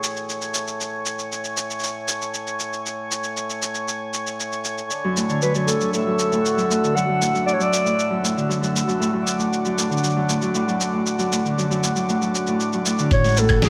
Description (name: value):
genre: folktronica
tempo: 117 BPM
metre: 4/4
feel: straight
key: unclear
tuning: A4 = 440 Hz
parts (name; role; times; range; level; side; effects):
- mellow clarinet; melody; 0.0, 5.4-8.2, 13.1-13.7 s; G#4 to F#5; -25 LUFS; equal; vintage 12-bit sampler grit, delay
- mellow accordion; sustained chords; 0.0-13.7 s; A2 to G#5; -29 LUFS; equal; low-pass filter
- lo-fi sampler-style drum kit; drums; 0.0-13.7 s; claves, hi-hat, shaker, snare drum; -28 LUFS; equal; overdrive
- Celtic harp; arpeggios; 5.0-13.7 s; F#2 to D3; -24 LUFS; equal; delay
- upright bass; bass; 13.1-13.7 s; A1; -22 LUFS; equal; none
- electronic kick drum; drums; 13.1-13.6 s; none; -22 LUFS; equal; overdrive
room: moderate echo chamber reverb, RT60 2.3 s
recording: none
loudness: -22 LUFS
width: mono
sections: 0.0-13.1 A section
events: none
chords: 0.0 Amaj7; 4.9 Dadd9; 13.1 Amaj7